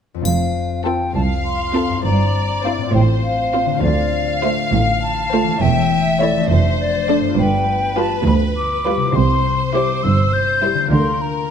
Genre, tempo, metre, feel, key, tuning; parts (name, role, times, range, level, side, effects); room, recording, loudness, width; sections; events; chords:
cinematic, playful, whimsical film cue; 68 BPM (dotted quarters); 6/8; straight; F major; A4 = 440 Hz
concert harp; arpeggios; 0.1-11.5 s; F2 to F5; -23 LUFS; left 9 dB
hollow concert flute; second line; 0.2-11.5 s; D5 to G6; -21 LUFS; left 1 dB
rich studio double bass section; bass; 0.3-11.5 s; E1 to D2; -21 LUFS; right 3 dB
warm studio cello section; bass; 0.3-11.5 s; C2 to D3; -21 LUFS; right 2 dB
triangle; percussion; 0.3-1.4 s; -30 LUFS; left 5 dB
warm studio violin section; melody; 0.9-10.8 s; A4 to D5; -26 LUFS; left 2 dB
warm studio viola section; accompaniment; 0.9-10.8 s; G3 to F4; -23 LUFS; right 1 dB
rich studio violin section; second line; 1.2-11.5 s; Bb4 to F5; -24 LUFS; left 1 dB
moderate scoring stage reverb, RT60 1.6 s; -15 LUFS; side -8 dB against mid
0.3-11.5 A section
0.3 F; 2.1 C7/G; 2.9 F/A; 3.8 Dm7; 5.6 A7/E; 6.5 Dm/F; 7.4 G7; 9.2 C; 10.9 Bb/D